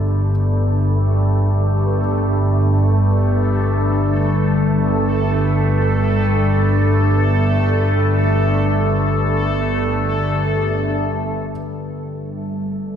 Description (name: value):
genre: dark ambient drone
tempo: free time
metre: none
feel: none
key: unclear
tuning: A4 = 440 Hz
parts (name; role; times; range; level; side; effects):
- clear concert grand piano; arpeggios; 0.0-11.5 s; D3 to A3; -44 LUFS; left 1 dB; none
- organ-like drone; drone; 0.0-13.0 s; G1 to G2; -16 LUFS; equal; ensemble chorus, built-in reverb, phaser
- bubbling stepped-filter texture; texture; 0.0-13.0 s; A3 to A4; -23 LUFS; right 1 dB; chorus, built-in reverb
- deep dark ambient pad; sustained chords; 12.1-13.0 s; G3 to A4; -27 LUFS; right 1 dB; chorus, built-in reverb
room: wet echo chamber reverb, RT60 2.4 s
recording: echo-heavy mix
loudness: -15 LUFS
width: side -8 dB against mid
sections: 0.0-11.5 A section; 11.5-13.0 B section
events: fade-in on synth texture 0.0-11.5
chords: 0.0 G5